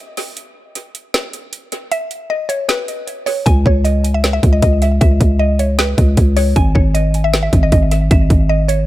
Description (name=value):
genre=hip hop, trap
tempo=155 BPM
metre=4/4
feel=half-time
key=C# minor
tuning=A4 = 439 Hz
part: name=trap drum kit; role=drums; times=0.2-8.8 s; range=hi-hat, kick drum, snare drum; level=-15 LUFS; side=equal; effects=analog delay
part: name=mallet-like synth pluck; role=melody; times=1.9-8.8 s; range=B4 to G#5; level=-20 LUFS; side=equal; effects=chorus, phaser, analog delay
part: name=growling 808-style bass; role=bass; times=3.5-8.9 s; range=G#1 to C#2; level=-14 LUFS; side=equal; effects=none
room=digital ambience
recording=echo-heavy mix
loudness=-12 LUFS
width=side -15 dB against mid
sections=0.0-8.9 A section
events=break 0.0-3.5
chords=0.0 N.C.; 3.5 C#m; 6.6 G#5